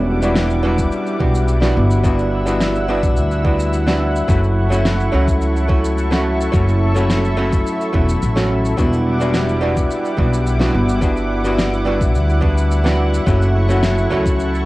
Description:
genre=sunset chillout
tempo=107 BPM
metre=4/4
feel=straight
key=E dorian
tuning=A4 = 440 Hz
part: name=archtop guitar, miked and amplified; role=accompaniment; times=0.0-14.6 s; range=F#3 to F#4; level=-19 LUFS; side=equal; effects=auto-pan, tape echo, plate reverb
part: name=lush unison pad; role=sustained chords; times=0.0-14.7 s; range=G3 to E6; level=-24 LUFS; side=equal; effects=chorus, plate reverb
part: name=concert harp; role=arpeggios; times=0.0-2.3 s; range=C#4 to C#5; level=-32 LUFS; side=equal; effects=none
part: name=upright bass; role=bass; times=0.0-14.7 s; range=E1 to D2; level=-17 LUFS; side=equal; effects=none
part: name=electronic shaker and snare drum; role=drums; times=0.2-14.6 s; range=none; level=-23 LUFS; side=equal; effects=cassette tape
part: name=electronic kick drum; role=drums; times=0.8-14.4 s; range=none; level=-18 LUFS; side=equal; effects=cassette tape
room=light reverb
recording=home recording on cassette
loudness=-14 LUFS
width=side -18 dB against mid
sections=0.0-14.7 A section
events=none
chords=0.0 Em9; 4.3 F#m7; 8.8 Em9; 13.3 F#m7

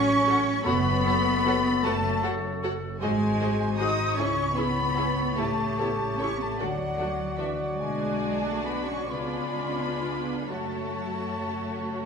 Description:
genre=classical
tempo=36-53 BPM (dotted quarters)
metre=6/8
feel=rubato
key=F# minor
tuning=A4 = 444 Hz
part: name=warm symphonic violin section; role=melody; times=0.0-12.1 s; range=E5 to D#6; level=-34 LUFS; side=left 2 dB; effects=none
part: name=mellow cor anglais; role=second line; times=0.0-12.1 s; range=B#4 to D5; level=-35 LUFS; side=right 1 dB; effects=none
part: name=mellow hollow silver concert flute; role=second line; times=0.0-12.1 s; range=E5 to D#6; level=-32 LUFS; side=left 2 dB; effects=none
part: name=warm clarinet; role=second line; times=0.0-12.1 s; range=E4 to A4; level=-38 LUFS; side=left 1 dB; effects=none
part: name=mellow French horn section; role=sustained chords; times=0.0-12.1 s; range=E3 to D#4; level=-33 LUFS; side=left 4 dB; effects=none
part: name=concert harp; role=arpeggios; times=0.0-12.1 s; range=F#2 to A4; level=-36 LUFS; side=left 6 dB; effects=none
part: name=rich symphonic cello section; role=bass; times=0.0-12.1 s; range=E3 to D#4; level=-31 LUFS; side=right 3 dB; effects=none
part: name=warm symphonic double bass section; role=bass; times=0.0-12.1 s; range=F#1 to F#2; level=-34 LUFS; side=right 2 dB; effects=none
part: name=warm symphonic violin section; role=second line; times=0.3-12.1 s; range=G#4 to F#5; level=-39 LUFS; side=left 1 dB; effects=none
part: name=rich symphonic viola section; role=accompaniment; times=0.3-12.1 s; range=D4 to A4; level=-35 LUFS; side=right 1 dB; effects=none
part: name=timpani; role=percussion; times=0.7-1.8 s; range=F#2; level=-38 LUFS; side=right 1 dB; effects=none
room=wet scoring stage reverb, RT60 1.6 s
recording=minimal, uncompressed stereo recording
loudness=-24 LUFS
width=side -6 dB against mid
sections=0.0-12.1 A section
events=none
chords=0.0 F#m/A; 0.7 F#m; 3.0 G#7; 4.2 C#m; 5.4 A7; 6.6 D; 7.8 G#m7b5/B; 9.1 C#7b9; 10.5 F#m

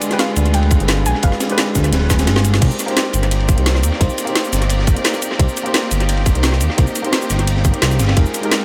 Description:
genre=liquid drum and bass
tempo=173 BPM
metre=4/4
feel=straight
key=C minor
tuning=A4 = 440 Hz
part: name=soft round pluck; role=melody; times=0.0-1.7 s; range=D5 to Ab5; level=-31 LUFS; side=equal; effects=chorus, cassette tape, dub echo
part: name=dark baby grand piano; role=accompaniment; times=0.0-8.6 s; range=D3 to C5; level=-25 LUFS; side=equal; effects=dub echo
part: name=clear studio string section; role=sustained chords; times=0.0-8.6 s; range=D3 to D5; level=-30 LUFS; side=equal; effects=none
part: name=crunchy breakbeat drum kit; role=drums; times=0.0-8.6 s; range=ride cymbal, snare drum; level=-28 LUFS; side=equal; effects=high-pass filter on cymbals, high-pass filter on snare, high-pass filter on room, analog delay
part: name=garage drum kit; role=drums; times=0.0-8.6 s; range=crash cymbal, hi-hat, shaker, snare drum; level=-23 LUFS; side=equal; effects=analog delay
part: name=smooth synth bass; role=bass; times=0.4-8.2 s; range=D1 to Eb2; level=-19 LUFS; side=equal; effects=tube saturation
part: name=electronic kick drum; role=drums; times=0.7-8.2 s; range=none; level=-18 LUFS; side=equal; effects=none
room=light reverb, small room ambience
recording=echo-heavy mix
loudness=-16 LUFS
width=mono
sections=0.0-2.6 A section; 2.6-8.6 A section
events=drop 0.0-2.6, 2.6-8.6; drum fill 2.1-2.6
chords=0.0 G7b9; 2.6 Cm7

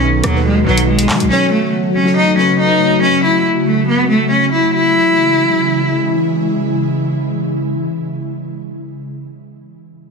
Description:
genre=hip hop, drill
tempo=140 BPM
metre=4/4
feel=half-time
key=C# minor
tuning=A4 = 439 Hz
part: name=glassy digital keys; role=accompaniment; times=0.0-3.0 s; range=B2 to C#5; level=-18 LUFS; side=left 2 dB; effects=chorus
part: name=ethereal airy pad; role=sustained chords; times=0.0-8.9 s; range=C#3 to F#4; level=-17 LUFS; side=right 1 dB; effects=ensemble chorus, built-in reverb
part: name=distorted 808-style bass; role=bass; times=0.0-1.3 s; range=B1 to F#3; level=-17 LUFS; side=equal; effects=distortion
part: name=clear cello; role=melody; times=0.2-6.0 s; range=F#3 to E4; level=-14 LUFS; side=left 1 dB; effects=none
part: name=drill drum kit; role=drums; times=0.2-1.3 s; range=handclaps, hi-hat, rim click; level=-20 LUFS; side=equal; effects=none
room=light reverb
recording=dense, heavily limited modern master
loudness=-12 LUFS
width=side -4 dB against mid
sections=0.0-4.7 A section; 4.7-8.2 B section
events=none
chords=0.0 B; 1.3 F#m; 4.7 C#m

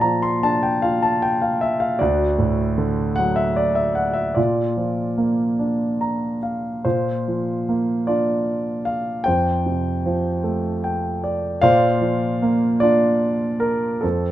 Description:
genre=classical, lyrical solo piano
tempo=50 BPM (dotted quarters)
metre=6/8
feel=rubato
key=Bb major from 6.8 s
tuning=A4 = 440 Hz
part: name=warm grand piano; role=solo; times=0.0-14.3 s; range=D2 to C6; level=-18 LUFS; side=equal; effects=none
room=little or no reverb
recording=close, detailed microphones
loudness=-18 LUFS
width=side -13 dB against mid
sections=0.0-6.8 A section; 6.8-14.3 B section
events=grand piano fill 5.6-6.8, 10.4-11.6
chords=0.0 Bb; 2.0 D; 4.4 Bb; 9.3 Fadd9; 11.6 Bbadd9

